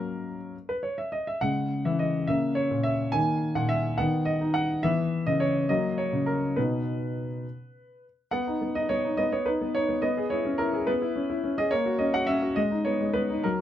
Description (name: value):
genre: classical-period piano sonatina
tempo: 70 BPM (dotted quarters)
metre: 6/8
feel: straight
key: B major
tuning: A4 = 440 Hz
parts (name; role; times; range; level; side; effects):
- clear concert grand piano; solo; 0.0-13.6 s; A#2 to G#5; -24 LUFS; equal; none
room: light reverb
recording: close, detailed microphones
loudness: -24 LUFS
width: side -11 dB against mid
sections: 0.0-8.3 A section; 8.3-13.6 A section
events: none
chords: 0.0 F#; 1.4 C#m; 2.3 A#dim; 3.1 D#5; 4.0 B/D#; 4.8 C#m7/E; 5.7 F#; 6.6 B; 10.0 C#m7/B; 11.7 F#/A#; 12.6 G#m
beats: 0.54 | 1.42 2.28 | 3.13 3.98 | 4.83 5.69 | 6.56 7.44 | 8.32 9.19 | 10.04 10.88 | 11.72 12.56 | 13.44